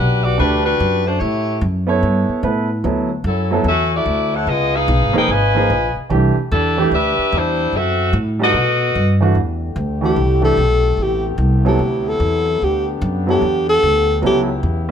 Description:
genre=jazz, big band swing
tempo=147 BPM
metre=4/4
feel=swing 65% on 8ths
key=E minor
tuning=A4 = 436 Hz
part: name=dark saxophone section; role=melody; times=0.0-9.2 s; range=F#3 to G#5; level=-17 LUFS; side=left 1 dB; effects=none
part: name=upright bass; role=bass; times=0.0-14.9 s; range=E#1 to B2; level=-18 LUFS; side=equal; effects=none
part: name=warm baby grand piano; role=accompaniment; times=0.4-14.9 s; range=E3 to C#5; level=-20 LUFS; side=right 4 dB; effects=none
part: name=bright trombone section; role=sustained chords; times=9.4-14.9 s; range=C3 to G4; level=-26 LUFS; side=left 4 dB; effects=none
part: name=mellow alto saxophone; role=melody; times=10.1-14.4 s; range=G4 to A4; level=-17 LUFS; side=left 1 dB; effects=none
room=light reverb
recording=none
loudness=-14 LUFS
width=side -8 dB against mid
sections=0.0-9.4 A section; 9.4-14.9 B section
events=alto saxophone solo 9.4-14.9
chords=0.0 Em9 (rootless); 1.2 A7; 2.8 Dmaj13; 4.5 C#13; 6.1 Cmaj13; 7.7 F#m7b5; 8.5 B7b13; 9.4 Em7; 11.0 Am9; 11.8 D13; 12.6 Gmaj7; 14.2 C#m7b5

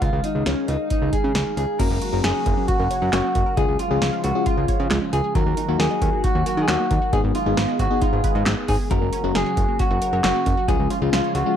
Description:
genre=synth-pop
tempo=135 BPM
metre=4/4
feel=straight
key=unclear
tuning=A4 = 439 Hz
part: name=electric guitar at the edge of break-up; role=melody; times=0.0-11.6 s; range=C#4 to A#4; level=-24 LUFS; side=right 1 dB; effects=none
part: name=phased analog pad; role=sustained chords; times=0.0-11.6 s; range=C#3 to E#5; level=-29 LUFS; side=equal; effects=phaser, chorus
part: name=fat analog bass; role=bass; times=0.0-11.4 s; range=F#1 to D#3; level=-24 LUFS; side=equal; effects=none
part: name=electro analog drum machine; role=drums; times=0.0-11.5 s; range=crash cymbal, handclaps, hi-hat, kick drum, snare drum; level=-24 LUFS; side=equal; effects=none
part: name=FM electric piano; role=accompaniment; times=1.8-11.6 s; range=G#3 to C#5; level=-27 LUFS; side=left 12 dB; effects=chorus
part: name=wide unison pluck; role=arpeggios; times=1.8-11.6 s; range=E#3 to F#5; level=-32 LUFS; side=right 5 dB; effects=auto-pan
room=light reverb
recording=dark, warm production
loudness=-18 LUFS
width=side -9 dB against mid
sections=0.0-1.8 A section; 1.8-11.6 B section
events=none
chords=0.0 C#add9; 1.8 F#; 3.6 C#; 5.4 D#m; 7.1 G#m; 8.9 F#; 10.7 C#

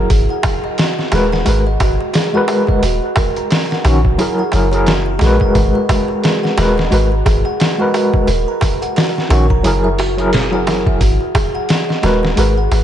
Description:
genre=trip hop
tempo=88 BPM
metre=4/4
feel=swing 58% on 16ths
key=G# minor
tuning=A4 = 440 Hz
part: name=overdriven tine electric piano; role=accompaniment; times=0.0-12.5 s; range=D#3 to B4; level=-18 LUFS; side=equal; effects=fast tremolo, tape echo
part: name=music box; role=arpeggios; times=0.0-12.7 s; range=F#4 to A#5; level=-20 LUFS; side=right 3 dB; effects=ping-pong delay
part: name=soft 808-style bass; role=bass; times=0.1-12.8 s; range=D#1 to A#1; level=-15 LUFS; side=equal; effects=none
part: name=trip hop sampler-style drum kit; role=drums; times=0.1-12.8 s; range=hi-hat, kick drum, snare drum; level=-18 LUFS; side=equal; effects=none
part: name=darbuka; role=percussion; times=0.1-12.8 s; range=none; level=-25 LUFS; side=right 2 dB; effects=none
room=light reverb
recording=nothing above 10.8 kHz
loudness=-12 LUFS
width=side -10 dB against mid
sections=0.0-12.8 A section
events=none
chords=0.1 G#m9; 2.8 D#m; 4.2 F#9; 5.6 G#m9; 8.3 D#m; 9.6 F#9; 11.0 G#m9

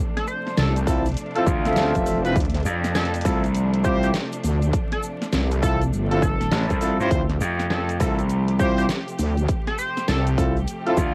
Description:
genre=glitch hop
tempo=101 BPM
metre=4/4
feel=swing 63% on 16ths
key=D minor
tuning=A4 = 440 Hz
part: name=bright studio string section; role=sustained chords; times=0.0-11.1 s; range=C3 to G4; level=-35 LUFS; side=equal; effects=vintage 12-bit sampler grit, sidechain pumping, cassette tape
part: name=sync lead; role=melody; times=0.2-11.1 s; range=F4 to C5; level=-32 LUFS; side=equal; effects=chorus, cassette tape, tape echo
part: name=dubstep drum kit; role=drums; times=0.2-11.0 s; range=hi-hat, snare drum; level=-31 LUFS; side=equal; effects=overdrive, cassette tape
part: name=egg shaker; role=percussion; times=0.3-11.1 s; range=none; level=-44 LUFS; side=equal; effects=none
part: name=wobble bass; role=bass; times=0.6-10.7 s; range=F1 to D2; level=-24 LUFS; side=equal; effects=chorus, overdrive
part: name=clear horn section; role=stabs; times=0.9-11.0 s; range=C4 to E5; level=-27 LUFS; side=equal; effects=vintage 12-bit sampler grit, sidechain pumping, cassette tape
part: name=electronic kick drum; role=drums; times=0.9-11.1 s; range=none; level=-27 LUFS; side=equal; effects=overdrive, cassette tape
part: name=gritty slap bass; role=bass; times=1.5-11.1 s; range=A1 to G2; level=-25 LUFS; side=equal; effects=overdrive
room=light reverb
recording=home recording on cassette, vinyl crackle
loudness=-22 LUFS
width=mono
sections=0.0-11.1 A section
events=none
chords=0.0 Dm7

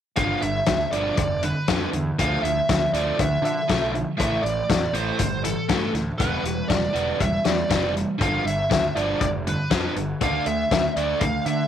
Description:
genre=indie rock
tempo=120 BPM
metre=4/4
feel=straight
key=unclear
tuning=A4 = 443 Hz
part: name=biting lead guitar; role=melody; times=0.2-11.7 s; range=A4 to F5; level=-25 LUFS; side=right 1 dB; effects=overdrive, slapback echo
part: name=biting overdriven guitar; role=riff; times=0.2-11.7 s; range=G2 to D4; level=-26 LUFS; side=right 1 dB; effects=none
part: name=fuzz picked electric bass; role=bass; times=0.2-11.6 s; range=E1 to D3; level=-29 LUFS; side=right 2 dB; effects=overdrive
part: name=loose indie drum kit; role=drums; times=0.2-11.6 s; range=hi-hat, kick drum, snare drum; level=-25 LUFS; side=left 4 dB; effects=none
room=light reverb, small room ambience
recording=1960s-style stereo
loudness=-20 LUFS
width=side -9 dB against mid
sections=0.2-11.7 A section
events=none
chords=0.2 G7; 2.2 Dmadd9; 4.2 A5; 6.2 Em7; 8.2 G7; 10.2 Dsus2

